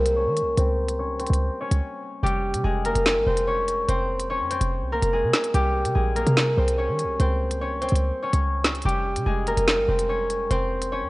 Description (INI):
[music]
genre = hip hop, drill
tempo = 145 BPM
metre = 4/4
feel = half-time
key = unclear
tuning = A4 = 440 Hz
[part]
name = concert harp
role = melody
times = 0.0-11.1 s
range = G3 to Db5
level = -24 LUFS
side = equal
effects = low-pass filter
[part]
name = short 808-style bass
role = bass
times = 0.0-11.1 s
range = F1 to Eb3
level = -24 LUFS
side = equal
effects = none
[part]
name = drill drum kit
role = drums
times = 0.1-10.9 s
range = hi-hat, snare drum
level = -26 LUFS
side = equal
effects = none
[sound]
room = light reverb, digital ambience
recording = worn, warbling old tape, cassette tape, warbly pitch drift, nothing above 10.8 kHz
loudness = -21 LUFS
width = side -21 dB against mid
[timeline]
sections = 0.0-11.1 A section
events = filter sweep on harp 0.0-2.2; break 1.8-2.2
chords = 0.0 Cm; 0.6 N.C.; 2.2 Fm; 5.5 C5; 7.2 N.C.; 8.9 Fm